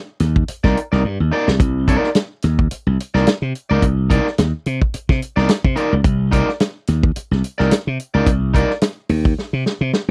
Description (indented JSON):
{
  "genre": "funk",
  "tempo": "108 BPM",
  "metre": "4/4",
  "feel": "swing 56% on 16ths",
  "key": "C minor",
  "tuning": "A4 = 440 Hz",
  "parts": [
    { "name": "slap bass", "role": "bass", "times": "0.2-10.1 s", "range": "C2 to C3", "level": "-20 LUFS", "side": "equal", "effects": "none" },
    { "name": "warm soul drum kit", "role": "drums", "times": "0.2-10.1 s", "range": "hi-hat, kick drum, snare drum", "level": "-20 LUFS", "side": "equal", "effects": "none" },
    { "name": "electric guitar at the edge of break-up", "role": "accompaniment", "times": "0.6-8.7 s", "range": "Eb4 to D5", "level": "-21 LUFS", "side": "equal", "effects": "none" }
  ],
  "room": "little or no reverb",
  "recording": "dry, close 1970s-style studio recording",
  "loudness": "-18 LUFS",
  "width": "mono",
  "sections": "0.0-10.1 A section",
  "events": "drum fill 1.0-1.6, 9.4-10.1",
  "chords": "0.0 Cm9"
}